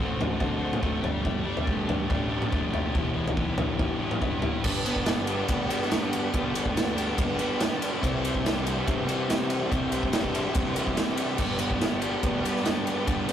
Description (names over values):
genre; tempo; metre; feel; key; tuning
indie rock; 142 BPM; 4/4; straight; G major; A4 = 437 Hz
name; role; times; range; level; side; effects
biting overdriven guitar; riff; 0.0-13.3 s; G2 to G4; -31 LUFS; left 3 dB; none
thick fuzz guitar; riff; 0.0-13.3 s; E2 to G4; -31 LUFS; right 4 dB; distortion
fuzz picked electric bass; bass; 0.0-13.3 s; E1 to D3; -34 LUFS; equal; overdrive
big rock drum kit; drums; 0.2-13.3 s; crash cymbal, kick drum, ride cymbal, snare drum, toms; -28 LUFS; equal; none
tonewheel organ; sustained chords; 4.7-13.3 s; B4 to D6; -37 LUFS; equal; none
room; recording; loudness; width
light reverb; rough rehearsal-room recording, tube saturation; -24 LUFS; side -10 dB against mid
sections
0.0-4.6 A section; 4.6-13.3 B section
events
none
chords
0.0 D5; 1.0 Gsus2; 3.0 Em7; 4.6 G; 8.0 Cadd9; 11.4 G